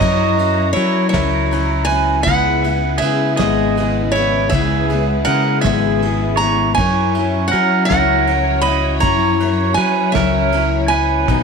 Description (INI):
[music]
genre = acoustic folk duo or small band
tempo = 53 BPM (dotted quarters)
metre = 6/8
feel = straight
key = unclear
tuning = A4 = 441 Hz
[part]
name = picked steel-string acoustic guitar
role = melody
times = 0.0-11.4 s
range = C#5 to B5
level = -19 LUFS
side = right 2 dB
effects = tape echo
[part]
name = pedal steel guitar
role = second line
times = 0.0-11.4 s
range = E4 to D#5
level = -21 LUFS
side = right 14 dB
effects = none
[part]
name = picked steel-string acoustic guitar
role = accompaniment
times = 0.0-11.4 s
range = B2 to A#4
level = -20 LUFS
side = left 14 dB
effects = none
[part]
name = warm studio string section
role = sustained chords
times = 0.0-11.4 s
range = C#3 to A#5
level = -24 LUFS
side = left 1 dB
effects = none
[part]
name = fingered electric bass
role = bass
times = 0.0-11.4 s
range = G#1 to F#3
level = -20 LUFS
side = equal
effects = none
[part]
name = soft brush drum kit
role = drums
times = 0.0-11.4 s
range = kick drum, ride cymbal, snare drum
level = -26 LUFS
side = right 4 dB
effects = none
[sound]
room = light reverb, studio reverb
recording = 1960s-style stereo with parts hard left and right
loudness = -13 LUFS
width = side -5 dB against mid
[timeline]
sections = 0.0-11.4 A section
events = none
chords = 0.0 F#7; 2.3 C#m7; 6.8 F#7